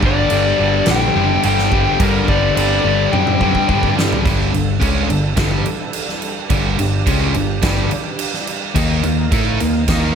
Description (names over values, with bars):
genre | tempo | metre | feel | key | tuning
hard rock | 107 BPM | 4/4 | straight | G minor from 4.2 s | A4 = 440 Hz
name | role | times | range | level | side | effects
warm analog pad | sustained chords | 0.0-10.2 s | G3 to F5 | -29 LUFS | right 3 dB | chorus, tremolo
heavy high-gain guitar | riff | 0.0-4.2 s | G2 to D4 | -24 LUFS | right 1 dB | distortion
sludgy distorted guitar | riff | 0.0-10.2 s | G2 to A4 | -21 LUFS | left 11 dB | overdrive
tight distorted guitar | riff | 0.0-10.2 s | G2 to A4 | -22 LUFS | right 13 dB | distortion
picked electric bass | bass | 0.0-10.1 s | F#1 to A2 | -20 LUFS | right 1 dB | none
huge arena drum kit | drums | 0.0-10.0 s | crash cymbal, kick drum, snare drum, toms | -20 LUFS | right 1 dB | none
lead guitar through a small cranked amp | melody | 0.1-3.9 s | Bb4 to G5 | -19 LUFS | left 6 dB | overdrive
room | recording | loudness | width
studio reverb | none | -14 LUFS | side -7 dB against mid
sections
0.0-4.2 A section; 4.2-10.2 B section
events
drum fill 3.1-4.2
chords
0.0 G5; 8.8 Eb5